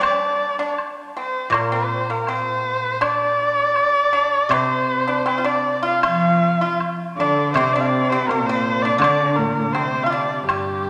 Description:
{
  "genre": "chinese traditional, Chinese chamber ensemble",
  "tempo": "80 BPM",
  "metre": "2/4",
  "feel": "rubato",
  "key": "unclear",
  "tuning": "A4 = 436 Hz",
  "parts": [
    { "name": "dark erhu", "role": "melody", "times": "0.0-10.9 s", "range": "G4 to F5", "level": "-22 LUFS", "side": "equal", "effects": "none" },
    { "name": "pipa", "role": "second line", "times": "0.0-10.9 s", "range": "G3 to F4", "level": "-28 LUFS", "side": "equal", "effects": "none" },
    { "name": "guzheng", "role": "accompaniment", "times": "0.0-10.9 s", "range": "Bb2 to D5", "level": "-28 LUFS", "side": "equal", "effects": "none" },
    { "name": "woodblock", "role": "percussion", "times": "0.0-10.7 s", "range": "none", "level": "-29 LUFS", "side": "equal", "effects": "none" },
    { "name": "rich cello", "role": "second line", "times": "6.0-10.9 s", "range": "G2 to F3", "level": "-26 LUFS", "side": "equal", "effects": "none" }
  ],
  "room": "wet concert hall reverb, RT60 2.4 s",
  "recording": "none",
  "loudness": "-20 LUFS",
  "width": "mono",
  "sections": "0.0-10.9 A section",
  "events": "none",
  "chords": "none"
}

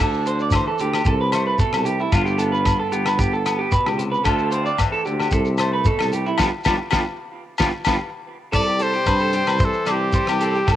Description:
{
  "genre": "highlife guitar band",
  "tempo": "112 BPM",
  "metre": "4/4",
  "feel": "straight",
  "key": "C major",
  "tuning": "A4 = 440 Hz",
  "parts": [
    { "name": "clean electric guitar", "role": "accompaniment", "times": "0.0-10.8 s", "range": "G2 to F4", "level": "-29 LUFS", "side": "left 6 dB", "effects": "wide subtle chorus, cassette tape" },
    { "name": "electric guitar through a small old amp", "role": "arpeggios", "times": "0.0-10.8 s", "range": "E4 to D5", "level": "-23 LUFS", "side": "right 4 dB", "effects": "cassette tape, tape echo" },
    { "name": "mellow tuba", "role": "bass", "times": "0.0-10.8 s", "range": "G1 to G2", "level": "-24 LUFS", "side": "equal", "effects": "none" },
    { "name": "damped 70s drum kit", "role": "drums", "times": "0.0-10.8 s", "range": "crash cymbal, hi-hat, kick drum, rim click, snare drum", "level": "-25 LUFS", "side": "equal", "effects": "cassette tape" },
    { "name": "agogo bells", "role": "percussion", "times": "0.0-10.8 s", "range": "none", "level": "-26 LUFS", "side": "left 8 dB", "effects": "none" },
    { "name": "shekere", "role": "percussion", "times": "0.1-10.8 s", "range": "none", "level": "-24 LUFS", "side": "equal", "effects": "none" },
    { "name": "brilliant trumpet", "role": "melody", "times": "8.5-10.7 s", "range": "G4 to D5", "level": "-21 LUFS", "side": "left 1 dB", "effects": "cassette tape" }
  ],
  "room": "light reverb",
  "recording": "home recording on cassette",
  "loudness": "-18 LUFS",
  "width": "side -12 dB against mid",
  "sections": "0.0-8.5 A section; 8.5-10.8 B section",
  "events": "band accent 6.4-8.5; drum fill 7.5-8.5",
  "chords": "0.0 D5; 1.1 C5; 2.1 G7; 4.3 Dm7; 5.3 C5; 6.4 G7; 8.5 C"
}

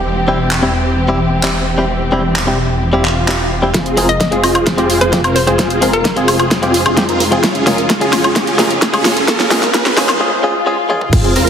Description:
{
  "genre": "EDM, festival progressive house",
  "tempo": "130 BPM",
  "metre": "4/4",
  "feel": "straight",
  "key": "F minor",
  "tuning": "A4 = 440 Hz",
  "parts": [
    { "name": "dark symphonic string section", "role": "sustained chords", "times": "0.0-11.5 s", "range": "C3 to G4", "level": "-21 LUFS", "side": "equal", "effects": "sidechain pumping" },
    { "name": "wide detuned saw bass", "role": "bass", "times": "0.0-11.5 s", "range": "E1 to F1", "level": "-21 LUFS", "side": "equal", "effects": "chorus, tube saturation, sidechain pumping" },
    { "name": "direct-recorded clean electric guitar", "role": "accompaniment", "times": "0.3-11.0 s", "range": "G3 to Ab4", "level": "-18 LUFS", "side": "left 2 dB", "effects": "sidechain pumping, ping-pong delay" },
    { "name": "pop drum kit", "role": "drums", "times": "0.5-11.5 s", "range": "crash cymbal, handclaps, hi-hat, snare drum, toms, woodblock", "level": "-17 LUFS", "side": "equal", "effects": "overdrive" },
    { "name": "swell, riser and sub drop", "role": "sound effects", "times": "3.0-11.5 s", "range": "none", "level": "-22 LUFS", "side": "right 1 dB", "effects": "none" },
    { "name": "supersaw chords", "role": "riff", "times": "3.7-11.5 s", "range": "C4 to Bb4", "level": "-16 LUFS", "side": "equal", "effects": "ensemble chorus, sidechain pumping, low-pass filter, ping-pong delay" },
    { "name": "electronic kick drum", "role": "drums", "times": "3.7-11.2 s", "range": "none", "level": "-18 LUFS", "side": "equal", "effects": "high-pass filter on kick" },
    { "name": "hollow square pluck", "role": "melody", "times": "4.1-6.3 s", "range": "Bb4 to Eb5", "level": "-19 LUFS", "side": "left 2 dB", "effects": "chorus, ping-pong delay" }
  ],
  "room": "wet recital hall reverb, RT60 1.6 s, digital ambience",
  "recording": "heavily compressed radio sound, multiband compression, high-pass filter",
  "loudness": "-11 LUFS",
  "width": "side -8 dB against mid",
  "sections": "0.0-3.7 A section; 3.7-11.1 B section",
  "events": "swell 3.0-3.7, 10.2-11.1; build-up 3.7-11.1; drum fill 3.7-10.2, 10.9; filter sweep on supersaw synth 3.7-11.1; break 10.2-11.1; impact 11.1-11.5",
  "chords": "0.1 C/E; 3.7 Fm; 7.4 Db/F"
}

